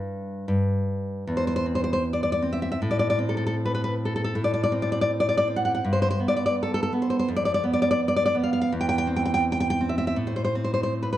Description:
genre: romantic piece for solo classical guitar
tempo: 72-84 BPM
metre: 2/4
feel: rubato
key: C major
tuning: A4 = 441 Hz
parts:
  - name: nylon-string guitar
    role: solo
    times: 0.0-11.2 s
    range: E2 to G5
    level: -22 LUFS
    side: equal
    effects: none
room: moderate recital hall reverb, RT60 1.5 s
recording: dark, warm production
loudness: -22 LUFS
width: side -13 dB against mid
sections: 0.0-1.3 A section; 1.3-11.2 A section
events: none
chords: 0.0 N.C.; 1.3 C/E; 2.8 Am; 5.8 G; 7.3 Bdim/F; 8.7 C/E; 10.2 Am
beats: 0.46 | 1.27 2.03 | 2.79 3.53 | 4.34 5.10 | 5.83 6.55 | 7.28 8.00 | 8.72 9.44 | 10.18 10.94

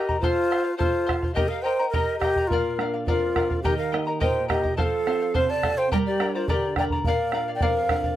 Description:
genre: andean folk, Andean ensemble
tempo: 106 BPM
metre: 2/4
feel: straight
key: unclear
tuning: A4 = 440 Hz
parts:
  - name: breathy large quena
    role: melody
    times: 0.0-8.2 s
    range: F4 to G5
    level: -25 LUFS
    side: right 1 dB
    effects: none
  - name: breathy polished pan flute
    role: second line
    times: 0.0-8.2 s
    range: Bb4 to A5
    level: -30 LUFS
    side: left 5 dB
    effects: none
  - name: charango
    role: accompaniment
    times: 0.0-8.2 s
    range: G4 to Bb5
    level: -29 LUFS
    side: left 3 dB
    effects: none
  - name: bombo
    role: percussion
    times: 0.1-8.2 s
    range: none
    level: -27 LUFS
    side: right 1 dB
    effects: none
  - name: nylon-string guitar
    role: accompaniment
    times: 2.5-8.2 s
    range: F2 to Bb4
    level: -31 LUFS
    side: right 4 dB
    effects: none
room: moderate studio ambience, RT60 0.5 s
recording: none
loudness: -21 LUFS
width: side -12 dB against mid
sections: 0.0-7.0 A section; 7.0-8.2 A section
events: none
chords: 0.2 F; 1.4 Eb; 2.5 Bb; 3.6 Eb; 4.8 F; 5.9 Gm; 7.0 Bb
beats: | 0.23 0.80 | 1.37 1.94 | 2.51 3.08 | 3.65 4.22 | 4.78 5.35 | 5.92 6.48 | 7.05 7.61

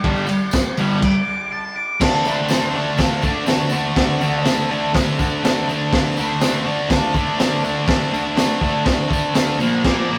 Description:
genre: garage rock duo or trio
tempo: 122 BPM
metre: 4/4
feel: straight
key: unclear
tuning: A4 = 440 Hz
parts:
  - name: thick fuzz guitar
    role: riff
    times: 0.0-10.2 s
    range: G2 to D4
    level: -22 LUFS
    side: equal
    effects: distortion
  - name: crunchy breakbeat drum kit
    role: drums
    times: 0.0-10.0 s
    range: crash cymbal, hi-hat, kick drum, ride cymbal, snare drum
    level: -23 LUFS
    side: equal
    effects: none
  - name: tambourine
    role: percussion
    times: 0.0-9.9 s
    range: none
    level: -37 LUFS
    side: equal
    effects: none
  - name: octave-fuzz lead guitar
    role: melody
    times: 1.0-10.2 s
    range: D4 to D6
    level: -29 LUFS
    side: equal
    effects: distortion
room: wet stone room reverb, RT60 1.2 s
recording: rough rehearsal-room recording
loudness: -19 LUFS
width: mono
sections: 0.0-2.0 A section; 2.0-10.2 B section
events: lead electric guitar solo 0.0-2.0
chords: 0.0 G5; 2.0 D5; 9.6 Bb5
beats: | 0.05 0.54 1.03 1.52 | 2.01 2.50 2.99 3.48 | 3.97 4.46 4.95 5.44 | 5.93 6.42 6.91 7.40 | 7.89 8.38 8.87 9.36 | 9.85

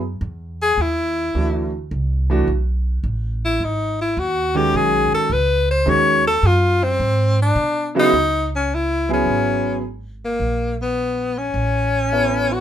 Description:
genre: jazz, small-group swing and bop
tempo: 106 BPM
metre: 4/4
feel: swing 68% on 8ths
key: C# minor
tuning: A4 = 444 Hz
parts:
  - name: upright bass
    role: bass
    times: 0.0-12.6 s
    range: G#1 to B2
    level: -22 LUFS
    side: right 1 dB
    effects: none
  - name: breathy tenor saxophone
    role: melody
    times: 0.6-12.6 s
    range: A#3 to C#5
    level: -18 LUFS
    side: left 2 dB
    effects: none
  - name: clear concert grand piano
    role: accompaniment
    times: 1.3-12.6 s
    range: C#3 to C#5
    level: -20 LUFS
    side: right 2 dB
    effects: none
room: light reverb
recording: minimal, uncompressed stereo recording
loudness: -17 LUFS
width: side -10 dB against mid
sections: 0.0-8.1 A section; 8.1-12.6 B section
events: tenor saxophone solo 0.0-8.1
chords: 0.0 N.C.; 1.3 D9; 3.6 B69/G#; 5.9 D#m9; 7.0 C#m7; 10.4 N.C.; 11.5 A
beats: 0.21 0.78 | 1.34 1.91 2.48 3.04 | 3.61 4.17 4.74 5.30 | 5.87 6.44 7.00 7.57 | 8.14 8.70 9.27 9.84 | 10.41 10.98 11.55 12.12

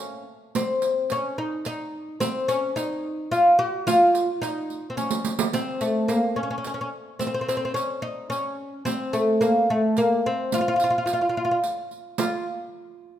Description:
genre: Persian modal ensemble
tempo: 108 BPM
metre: 3/4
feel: straight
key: F dastgah homayun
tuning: A4 = 440 Hz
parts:
  - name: oud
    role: melody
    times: 0.0-12.4 s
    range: A3 to Gb4+45c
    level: -22 LUFS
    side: equal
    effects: none
  - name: riq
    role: percussion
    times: 0.6-12.4 s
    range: none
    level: -30 LUFS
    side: right 6 dB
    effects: none
room: light reverb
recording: minimal, uncompressed stereo recording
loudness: -22 LUFS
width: side -11 dB against mid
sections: 0.0-12.2 A section; 12.2-13.2 B section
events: drum fill 5.0-5.5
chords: none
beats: | 0.54 1.10 1.65 | 2.21 2.76 3.32 | 3.87 4.42 4.98 | 5.53 6.09 6.64 | 7.20 7.75 8.31 | 8.86 9.42 9.97 | 10.53 11.08 11.63 | 12.19

